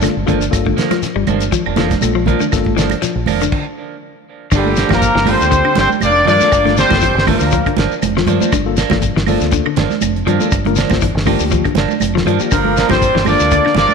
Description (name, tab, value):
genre	afrobeat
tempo	120 BPM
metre	4/4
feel	swing 55% on 16ths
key	G dorian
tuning	A4 = 440 Hz
part	tine electric piano	accompaniment	0.0-13.7 s	Bb3 to C5	-23 LUFS	left 15 dB	overdrive, fast stereo tremolo
part	clean electric guitar	arpeggios	0.0-13.9 s	D3 to G3	-21 LUFS	left 10 dB	none
part	clean electric guitar	stabs	0.0-13.9 s	F3 to D4	-22 LUFS	right 10 dB	tape echo
part	deep dub fingered electric bass	bass	0.0-13.9 s	F1 to G2	-20 LUFS	equal	none
part	damped 70s drum kit	drums	0.0-13.9 s	crash cymbal, hi-hat, kick drum, snare drum	-20 LUFS	equal	none
part	claves	percussion	0.0-13.8 s	none	-29 LUFS	right 13 dB	none
part	congas	percussion	0.0-13.9 s	none	-21 LUFS	right 12 dB	none
part	shekere	percussion	0.0-13.9 s	none	-27 LUFS	left 10 dB	none
part	mellow horn section	melody	4.6-7.7, 12.5-13.9 s	G3 to D5	-14 LUFS	left 1 dB	none
part	raspy tenor saxophone	second line	4.6-7.7, 12.5-13.9 s	D3 to Bb3	-22 LUFS	right 11 dB	none
room	moderate echo chamber reverb, RT60 2.2 s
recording	1960s-style stereo with parts hard left and right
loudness	-12 LUFS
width	side -5 dB against mid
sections	0.0-4.5 A section; 4.5-13.9 B section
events	stop 3.5-4.5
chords	0.0 Gm7